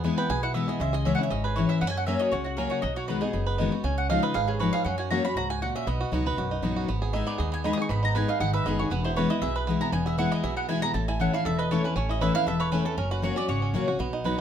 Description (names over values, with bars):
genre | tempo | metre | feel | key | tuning
bluegrass | 237 BPM | 4/4 | straight | unclear | A4 = 440 Hz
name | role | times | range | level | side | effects
bluegrass banjo | melody | 0.0-14.4 s | F#3 to B4 | -31 LUFS | right 5 dB | none
picked steel-string acoustic guitar | accompaniment | 0.0-14.4 s | E2 to G#4 | -28 LUFS | left 4 dB | none
upright bass | bass | 0.0-14.3 s | E1 to F#2 | -31 LUFS | right 1 dB | none
mandolin | melody | 0.2-14.0 s | F#4 to D#6 | -31 LUFS | right 2 dB | none
room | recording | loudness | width
moderate studio reverb, RT60 0.7 s | none | -24 LUFS | side -9 dB against mid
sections
0.0-6.9 A section; 6.9-14.4 B section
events
none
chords
0.0 E; 0.8 C#m; 1.8 F#; 2.8 B6; 3.8 C#add9; 4.9 F#; 5.9 B; 6.9 G#m; 8.9 E; 10.9 A; 13.0 F#